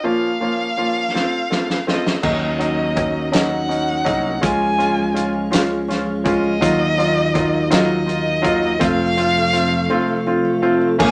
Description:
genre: six-eight pop ballad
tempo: 55 BPM (dotted quarters)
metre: 6/8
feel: straight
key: unclear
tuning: A4 = 440 Hz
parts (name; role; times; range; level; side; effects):
- warm violin; melody; 0.0-11.1 s; Eb5 to Ab5; -24 LUFS; equal; none
- bright upright piano; accompaniment; 0.0-11.1 s; F3 to Ab4; -23 LUFS; equal; none
- loose indie drum kit; drums; 1.2-11.1 s; crash cymbal, hi-hat, kick drum, snare drum; -24 LUFS; equal; none
- mellow tonewheel organ; sustained chords; 2.2-11.1 s; C3 to F4; -25 LUFS; equal; slow rotary speaker
- picked steel-string acoustic guitar; arpeggios; 2.2-11.1 s; Gb3 to Gb4; -32 LUFS; equal; none
- modern bright fingered electric bass; bass; 2.2-11.1 s; Bb1 to F2; -28 LUFS; equal; none
room: wet studio reverb, RT60 0.6 s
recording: none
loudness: -18 LUFS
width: mono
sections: 0.0-2.2 A section; 2.2-11.0 B section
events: drum fill 1.1-2.2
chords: 0.0 Bbm/F; 1.1 F; 2.2 Ebm7; 4.4 Db; 6.6 Ebmadd9; 8.8 F

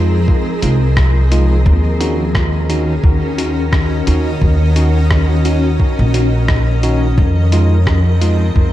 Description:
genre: ambient dub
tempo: 87 BPM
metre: 4/4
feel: swing 55% on 16ths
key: Eb dorian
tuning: A4 = 440 Hz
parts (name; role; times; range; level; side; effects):
- granular cloud pad; sustained chords; 0.0-8.7 s; Eb3 to Eb5; -20 LUFS; left 1 dB; built-in reverb
- bell-like tine electric piano; stabs; 0.0-8.4 s; Ab3 to Gb4; -22 LUFS; right 2 dB; fast stereo tremolo, dub echo
- upright bass; bass; 0.0-8.7 s; Bb1 to F2; -13 LUFS; equal; none
- wind-like tuned noise texture; texture; 0.0-8.7 s; Bb4; -27 LUFS; left 2 dB; built-in reverb
- electronic kick drum; drums; 0.3-8.7 s; none; -15 LUFS; equal; none
- lo-fi sampler-style drum kit; drums; 0.6-8.4 s; hi-hat, rim click; -24 LUFS; equal; none
room: little or no reverb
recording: dark, warm production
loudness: -11 LUFS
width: side -14 dB against mid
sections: 0.0-8.7 A section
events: none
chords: 0.0 Fm7; 1.7 Ebm7; 7.2 Fm7

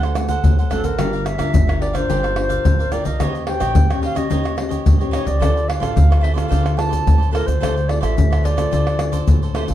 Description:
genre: samba and choro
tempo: 109 BPM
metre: 4/4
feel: straight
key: D minor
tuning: A4 = 437 Hz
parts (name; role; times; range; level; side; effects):
- bright reedy baroque flute; melody; 0.0-9.7 s; A4 to A5; -24 LUFS; equal; plate reverb
- cavaquinho; accompaniment; 0.0-9.7 s; D4 to F#5; -30 LUFS; right 7 dB; none
- nylon-string guitar; accompaniment; 0.0-9.7 s; A2 to C5; -26 LUFS; left 3 dB; none
- upright bass; bass; 0.0-9.7 s; G1 to Eb2; -21 LUFS; right 1 dB; none
- egg shaker, pandeiro, tamborim and surdo; percussion; 0.0-9.7 s; none; -18 LUFS; left 1 dB; none
room: moderate studio reverb, RT60 0.8 s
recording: dark, warm production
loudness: -15 LUFS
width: side -12 dB against mid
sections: 0.0-9.7 A section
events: none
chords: 0.0 D7; 1.0 Gm7; 3.2 Eb6; 5.4 Dm7

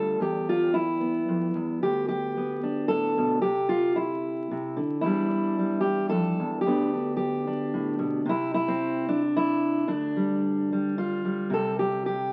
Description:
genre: folk, solo fingerstyle acoustic guitar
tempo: 111 BPM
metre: 3/4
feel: straight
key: unclear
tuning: A4 = 440 Hz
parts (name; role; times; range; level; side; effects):
- fingerpicked steel-string acoustic guitar; solo; 0.0-12.3 s; D2 to A4; -26 LUFS; equal; none
room: wet studio reverb, RT60 0.8 s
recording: very old 78 rpm record, vinyl crackle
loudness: -27 LUFS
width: mono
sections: 0.0-11.5 A section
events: none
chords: 0.2 Em; 1.8 Gadd9/D; 3.4 C; 5.0 Em7; 6.7 G/D; 8.3 N.C.; 9.9 Dm; 11.5 C5

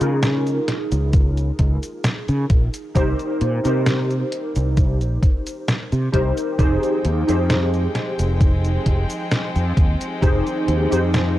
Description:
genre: vaporwave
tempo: 66 BPM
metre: 4/4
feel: straight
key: F minor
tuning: A4 = 440 Hz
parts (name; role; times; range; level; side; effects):
- warbly lo-fi synth keys; accompaniment; 0.0-11.4 s; Eb4 to C5; -24 LUFS; equal; ensemble chorus, tape echo
- fretless electric bass; bass; 0.0-11.4 s; F1 to Db3; -20 LUFS; equal; analog chorus
- detuned 8-bit digital drum machine; drums; 0.0-11.3 s; cabasa, hi-hat, snare drum; -24 LUFS; equal; overdrive
- electronic kick drum; drums; 1.1-10.4 s; none; -18 LUFS; equal; overdrive
- warm chamber string section; sustained chords; 6.6-11.4 s; F3 to G5; -29 LUFS; left 1 dB; none
room: little or no reverb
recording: dry, gritty hardware recording, cassette tape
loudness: -17 LUFS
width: side -14 dB against mid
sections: 0.0-11.4 A section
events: none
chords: 0.0 Db69; 3.0 Cm7; 6.6 Fm7

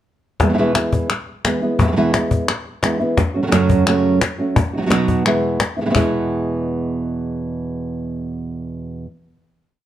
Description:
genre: flamenco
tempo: 173 BPM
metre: 4/4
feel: straight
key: E major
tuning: A4 = 440 Hz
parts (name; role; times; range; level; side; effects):
- nylon-string guitar; accompaniment; 0.4-9.1 s; E2 to F#4; -18 LUFS; right 2 dB; none
- cajon; percussion; 0.4-6.0 s; none; -20 LUFS; left 2 dB; none
- palmas hand claps; percussion; 0.4-6.0 s; none; -22 LUFS; left 4 dB; none
room: moderate large studio reverb, RT60 1.0 s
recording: dark, warm production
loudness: -16 LUFS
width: side -12 dB against mid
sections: 0.4-6.0 groove; 6.0-8.7 final chord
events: none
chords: 0.4 E; 3.2 F#m; 4.6 B; 5.3 E

